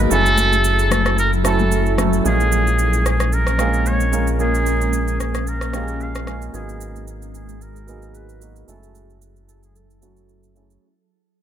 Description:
amapiano; 112 BPM; 4/4; swing 55% on 16ths; A4 = 439 Hz
clear concert grand piano; accompaniment; 0.0-10.8 s; Gb3 to Ab5; -25 LUFS; right 5 dB; low-pass filter
ethereal airy pad; sustained chords; 0.0-10.8 s; Gb3 to A4; -26 LUFS; equal; ensemble chorus, built-in reverb, tremolo, low-pass filter
round analog bass; bass; 0.0-10.8 s; Gb1 to Bb1; -21 LUFS; equal
trumpet with metal mute; melody; 0.1-10.6 s; Ab4 to F5; -22 LUFS; equal; low-pass filter, ping-pong delay
electronic shaker and rim click; drums; 0.1-10.8 s; -26 LUFS; right 1 dB
congas; percussion; 0.1-2.1 s; -25 LUFS; left 9 dB
studio reverb; -16 LUFS; side -10 dB against mid
0.0-10.8 A section
fade-out 0.0-10.8; filter sweep 0.0-10.8
0.1 Gbm7; 2.3 Bbm7; 6.5 Abm7; 8.7 Gbm7

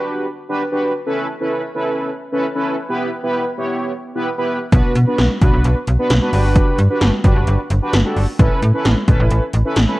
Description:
synth-pop; 131 BPM; 4/4; straight; A4 = 440 Hz
analog synth brass; accompaniment; 0.0-10.0 s; B3 to C#5; -19 LUFS; right 1 dB; chorus
slap-like FM bass; bass; 4.7-9.9 s; G1 to B2; -15 LUFS; equal
80s electronic pad drums; drums; 4.7-9.9 s; hi-hat, kick drum, snare drum; -16 LUFS; equal; overdrive
light reverb, digital ambience; worn, warbling old tape, cassette tape, warbly pitch drift; -15 LUFS; side -19 dB against mid
0.0-10.0 A section
0.0 Gmaj7; 1.1 Aadd9; 2.9 Em; 4.7 Bm; 6.3 Gmaj7; 8.4 Aadd9

